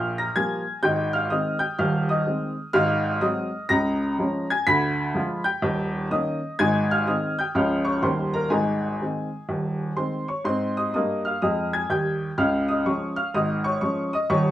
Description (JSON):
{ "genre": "jazz, stride piano", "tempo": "125 BPM", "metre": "4/4", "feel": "swing 64% on 8ths", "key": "Ab major", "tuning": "A4 = 440 Hz", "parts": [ { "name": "clear upright piano", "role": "solo", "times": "0.0-14.5 s", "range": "Eb1 to B6", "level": "-22 LUFS", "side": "equal", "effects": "none" } ], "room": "moderate club reverb, RT60 0.5 s", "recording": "minimal, uncompressed stereo recording", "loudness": "-22 LUFS", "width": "side -13 dB against mid", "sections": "0.0-10.5 A section; 10.5-14.5 A section", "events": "none", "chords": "0.0 Ebadd9 (rootless); 0.8 Ab; 2.8 Ab7; 3.7 Db; 4.7 Ddim7; 5.6 Eb7; 6.6 Ab; 7.6 Db; 8.0 Eb; 8.5 Ab; 12.4 Db" }